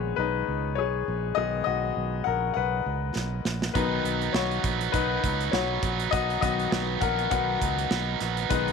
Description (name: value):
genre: piano-driven pop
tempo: 101 BPM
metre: 4/4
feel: swing 56% on 16ths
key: B major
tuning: A4 = 440 Hz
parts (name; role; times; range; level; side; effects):
- bright grand piano; accompaniment; 0.0-8.7 s; D#3 to F#5; -27 LUFS; left 11 dB; none
- fretless electric bass; bass; 0.0-8.7 s; A#1 to C#2; -31 LUFS; right 3 dB; none
- modern studio drum kit; drums; 3.2-8.7 s; hi-hat, kick drum, snare drum; -31 LUFS; right 3 dB; none
- overdriven electric guitar; riff; 3.7-8.7 s; B2 to B4; -29 LUFS; right 15 dB; none
room: light reverb, small room ambience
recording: 1960s-style stereo with parts hard left and right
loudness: -24 LUFS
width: side -5 dB against mid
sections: 0.0-8.7 A section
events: grand piano solo 0.0-8.7; drum fill 3.2-3.8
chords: 0.0 G#m; 3.8 B